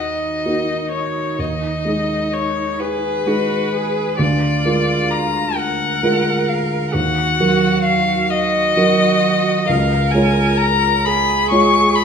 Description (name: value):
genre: classical, slow romantic movement for piano trio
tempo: 44 BPM (dotted quarters)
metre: 6/8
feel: rubato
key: Eb minor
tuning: A4 = 441 Hz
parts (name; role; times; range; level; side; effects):
- rich violin; melody; 0.0-12.0 s; Cb5 to Db6; -18 LUFS; left 4 dB; none
- rich cello; second line; 0.0-12.0 s; Eb4 to Bb4; -24 LUFS; right 8 dB; none
- dark concert grand piano; accompaniment; 0.0-12.0 s; Db2 to Db5; -18 LUFS; right 2 dB; none
room: wet recital hall reverb, RT60 1.4 s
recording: recorded in a church or concert hall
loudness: -15 LUFS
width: side -7 dB against mid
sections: 0.0-12.0 A section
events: none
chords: 0.0 Ebm; 1.4 Abm/Eb; 4.2 Bb7/D; 6.9 Ebm; 9.7 Db